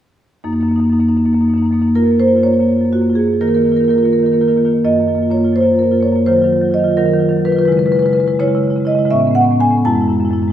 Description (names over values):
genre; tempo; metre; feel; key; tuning
classical, contemporary piece for solo marimba; 83 BPM (dotted quarters); 6/8; rubato; Gb lydian; A4 = 440 Hz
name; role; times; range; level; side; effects
marimba with medium hard mallets; solo; 0.4-10.5 s; Gb2 to A5; -12 LUFS; equal; none
room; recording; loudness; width
wet stone room reverb, RT60 1.3 s; heard from further back in the room; -12 LUFS; side -10 dB against mid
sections
0.5-2.0 A section; 2.0-10.5 B section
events
none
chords
0.5 Gb6; 2.0 Gbmaj7; 3.4 Ebsus2; 4.9 Gbmaj7; 6.3 Ebmadd9; 7.7 C#m7; 9.1 Aadd9; 9.8 F#sus2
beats
| 0.45 1.20 | 1.96 2.69 | 3.43 4.14 | 4.86 5.56 | 6.26 6.97 | 7.69 8.40 | 9.12 9.85